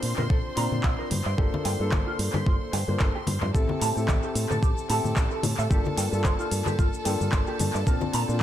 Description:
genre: nu-disco, nu disco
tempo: 111 BPM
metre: 4/4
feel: swing 56% on 16ths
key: G dorian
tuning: A4 = 438 Hz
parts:
  - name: warm concert grand piano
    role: accompaniment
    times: 0.0-8.4 s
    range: Bb3 to A5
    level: -31 LUFS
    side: left 2 dB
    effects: tape echo
  - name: rich chamber violin section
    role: sustained chords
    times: 0.0-8.4 s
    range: A4 to C6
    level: -36 LUFS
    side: equal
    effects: sidechain pumping
  - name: fingered electric bass with an envelope filter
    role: bass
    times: 0.0-8.4 s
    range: G1 to Bb2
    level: -28 LUFS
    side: equal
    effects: none
  - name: house drum kit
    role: drums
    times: 0.0-8.4 s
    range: handclaps, hi-hat, shaker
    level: -33 LUFS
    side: equal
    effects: overdrive, tape echo
  - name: electric guitar with an envelope filter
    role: riff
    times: 0.2-8.2 s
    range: F4 to Bb5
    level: -34 LUFS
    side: right 2 dB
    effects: wide subtle chorus, tape echo
  - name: congas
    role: percussion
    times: 0.2-8.4 s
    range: none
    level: -34 LUFS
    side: left 4 dB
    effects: none
  - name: electronic kick drum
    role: drums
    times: 0.3-8.4 s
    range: none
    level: -25 LUFS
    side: equal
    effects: none
room: light reverb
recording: echo-heavy mix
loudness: -23 LUFS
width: side -11 dB against mid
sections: 0.0-8.4 A section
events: none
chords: 0.0 Bbadd9; 1.1 Gm7; 3.5 Am7; 5.7 Gm7; 7.9 Bbmaj9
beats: 0.30 0.84 | 1.38 1.92 2.46 3.00 | 3.54 4.08 4.62 5.17 | 5.71 6.25 6.79 7.33 | 7.87 8.41

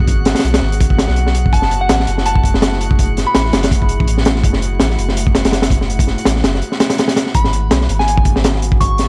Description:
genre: drum and bass, jungle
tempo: 165 BPM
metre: 4/4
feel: swing 55% on 16ths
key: G# phrygian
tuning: A4 = 440 Hz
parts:
  - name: warbly tape-like pad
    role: sustained chords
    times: 0.0-9.1 s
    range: A3 to G#4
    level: -29 LUFS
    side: equal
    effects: chorus, built-in reverb
  - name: soft dub sub bass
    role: bass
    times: 0.0-9.1 s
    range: F#1 to B1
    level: -20 LUFS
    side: equal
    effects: tube saturation
  - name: crunchy breakbeat drum kit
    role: drums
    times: 0.0-9.1 s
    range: hi-hat, kick drum, snare drum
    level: -17 LUFS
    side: equal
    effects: none
  - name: drifting glass-harmonics texture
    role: texture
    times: 0.0-7.4 s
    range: F#5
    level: -31 LUFS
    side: equal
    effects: chorus, built-in reverb
  - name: soft synth bell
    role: melody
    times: 1.5-3.4, 7.3-9.1 s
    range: F#5 to C#6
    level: -23 LUFS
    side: equal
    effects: chorus, vintage 12-bit sampler grit, dub echo
room: studio reverb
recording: dry, gritty hardware recording, vinyl crackle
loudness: -15 LUFS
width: mono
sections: 0.0-7.3 A section; 7.3-9.1 A section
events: drop 0.0-7.3, 7.3-9.1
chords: 0.0 G#m9; 1.5 F#m9; 7.3 G#m9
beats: | 0.07 0.44 0.80 1.17 | 1.53 1.89 2.26 2.62 | 2.98 3.35 3.71 4.08 | 4.44 4.80 5.17 5.53 | 5.89 6.26 6.62 6.99 | 7.35 7.71 8.07 8.44 | 8.80

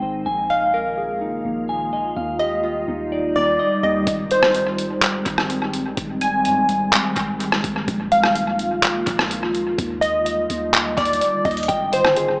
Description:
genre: hip hop, atmospheric cloud-rap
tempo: 126 BPM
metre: 4/4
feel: half-time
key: Ab lydian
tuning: A4 = 439 Hz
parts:
  - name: glassy FM pad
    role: sustained chords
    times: 0.0-12.4 s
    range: D3 to F4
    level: -25 LUFS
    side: equal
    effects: ensemble chorus, built-in reverb, phaser, sidechain pumping
  - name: clean electric guitar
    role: arpeggios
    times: 0.0-4.1, 11.7-12.4 s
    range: Eb3 to Ab5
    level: -24 LUFS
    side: equal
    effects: tape echo
  - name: soft 808-style bass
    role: bass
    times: 0.0-12.4 s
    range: Ab1 to Ab2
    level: -32 LUFS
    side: equal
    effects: none
  - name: glassy wavetable pluck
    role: melody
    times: 0.5-12.4 s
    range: C5 to Ab5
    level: -20 LUFS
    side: equal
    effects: chorus, tape echo
  - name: trip hop sampler-style drum kit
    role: drums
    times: 4.1-12.3 s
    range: handclaps, hi-hat, kick drum, rim click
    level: -21 LUFS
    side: equal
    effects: tape echo
room: moderate spring reverb, RT60 1.5 s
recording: echo-heavy mix, small speaker sound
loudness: -17 LUFS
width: side -29 dB against mid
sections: 0.0-4.1 A section; 4.1-12.4 B section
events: none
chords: 0.3 Bb7sus4; 2.2 Ebmaj9; 4.1 Abmaj7; 7.9 Bb7sus4; 9.8 Ebmaj9; 11.7 Abmaj7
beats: | 0.26 0.74 1.21 1.69 | 2.17 2.64 3.12 3.59 | 4.07 4.55 5.02 5.50 | 5.97 6.45 6.93 7.40 | 7.88 8.36 8.83 9.31 | 9.78 10.26 10.74 11.21 | 11.69 12.16

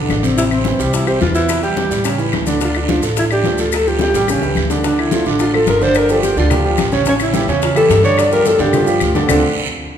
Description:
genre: Afro-Cuban jazz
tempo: 215 BPM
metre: 4/4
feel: straight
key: D minor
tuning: A4 = 441 Hz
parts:
  - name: warm grand piano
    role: accompaniment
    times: 0.0-9.4 s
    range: C3 to D5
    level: -18 LUFS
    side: right 2 dB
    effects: none
  - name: upright bass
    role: bass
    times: 0.0-9.4 s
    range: G1 to G2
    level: -21 LUFS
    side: equal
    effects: none
  - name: bongos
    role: percussion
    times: 0.1-9.4 s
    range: none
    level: -25 LUFS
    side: left 6 dB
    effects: none
  - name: claves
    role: percussion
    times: 0.1-9.4 s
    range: none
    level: -29 LUFS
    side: left 6 dB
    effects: none
  - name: congas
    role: percussion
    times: 0.1-9.4 s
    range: none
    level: -25 LUFS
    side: left 4 dB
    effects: none
  - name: guiro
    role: percussion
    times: 0.1-9.4 s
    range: none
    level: -27 LUFS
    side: right 5 dB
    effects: none
  - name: maracas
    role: percussion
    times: 0.1-9.4 s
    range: none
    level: -30 LUFS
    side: left 5 dB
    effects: none
  - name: breathy alto saxophone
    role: melody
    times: 0.4-9.4 s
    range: C4 to D5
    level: -17 LUFS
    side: equal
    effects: none
room: wet recital hall reverb, RT60 1.7 s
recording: recorded in a church or concert hall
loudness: -13 LUFS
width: side -9 dB against mid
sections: 0.0-4.8 A section; 4.8-9.3 B section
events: drum fill 4.0-4.8, 8.6-9.3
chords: 0.4 Am7; 1.5 Em; 2.1 A; 2.6 Dm; 4.3 A7; 4.8 Dm; 6.0 G5; 7.1 A7; 8.2 G5; 9.3 Dm7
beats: 0.10 | 0.38 0.66 0.94 1.22 | 1.49 1.77 2.05 2.33 | 2.61 2.89 3.17 3.44 | 3.72 4.00 4.28 4.56 | 4.84 5.12 5.39 5.67 | 5.95 6.23 6.51 6.79 | 7.07 7.34 7.62 7.90 | 8.18 8.46 8.74 9.02 | 9.29

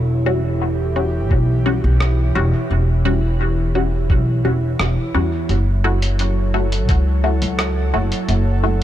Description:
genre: ambient dub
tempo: 86 BPM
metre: 4/4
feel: straight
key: E dorian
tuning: A4 = 440 Hz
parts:
  - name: airy breathy pad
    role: sustained chords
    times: 0.0-8.8 s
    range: E3 to F#5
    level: -24 LUFS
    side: right 1 dB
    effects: chorus
  - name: upright bass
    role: bass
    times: 0.0-8.8 s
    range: E1 to E2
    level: -18 LUFS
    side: equal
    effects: none
  - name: filtered dub chord stab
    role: stabs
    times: 0.3-8.8 s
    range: G3 to F#4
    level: -24 LUFS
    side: left 2 dB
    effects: phaser, dub echo
  - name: electronic kick drum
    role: drums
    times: 1.3-7.0 s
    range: none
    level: -17 LUFS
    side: equal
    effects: none
  - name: lo-fi sampler-style drum kit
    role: drums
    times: 2.0-8.4 s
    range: hi-hat, rim click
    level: -25 LUFS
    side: equal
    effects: none
room: little or no reverb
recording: none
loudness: -16 LUFS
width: side -12 dB against mid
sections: 0.0-8.8 A section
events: none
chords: 0.0 Em69; 5.5 F#m7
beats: 0.61 1.31 2.01 | 2.71 3.40 4.10 4.80 | 5.50 6.19 6.89 7.59 | 8.29

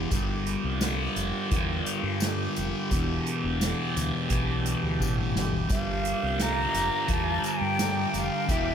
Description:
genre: psychedelic rock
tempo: 86 BPM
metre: 4/4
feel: straight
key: G dorian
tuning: A4 = 438 Hz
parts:
  - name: mellow woodwind section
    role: sustained chords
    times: 0.0-8.7 s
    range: E3 to G4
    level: -36 LUFS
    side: right 4 dB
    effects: none
  - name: fuzz guitar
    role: riff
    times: 0.0-8.7 s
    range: E2 to G3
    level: -29 LUFS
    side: left 1 dB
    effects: distortion, phaser
  - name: fingered electric bass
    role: bass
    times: 0.0-8.7 s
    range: E1 to G2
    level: -32 LUFS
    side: equal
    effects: none
  - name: soft-mallet drum kit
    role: drums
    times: 0.1-8.7 s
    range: hi-hat, kick drum, snare drum, toms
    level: -31 LUFS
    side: equal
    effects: none
  - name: tambourine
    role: percussion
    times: 0.1-8.7 s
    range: none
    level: -44 LUFS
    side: left 8 dB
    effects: none
  - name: breathy mellow jazz flute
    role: melody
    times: 5.7-8.7 s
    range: E5 to Bb5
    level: -29 LUFS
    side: right 1 dB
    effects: ping-pong delay
room: moderate huge ambient reverb, RT60 7.4 s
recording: dreamy mix soaked in reverb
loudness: -25 LUFS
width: side -8 dB against mid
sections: 0.0-8.7 A section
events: drum fill 5.0-5.7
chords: 0.1 Gm7; 2.9 Em7; 5.7 Gm7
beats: | 0.12 0.82 1.51 2.21 | 2.91 3.61 4.30 5.00 | 5.70 6.40 7.09 7.79 | 8.49

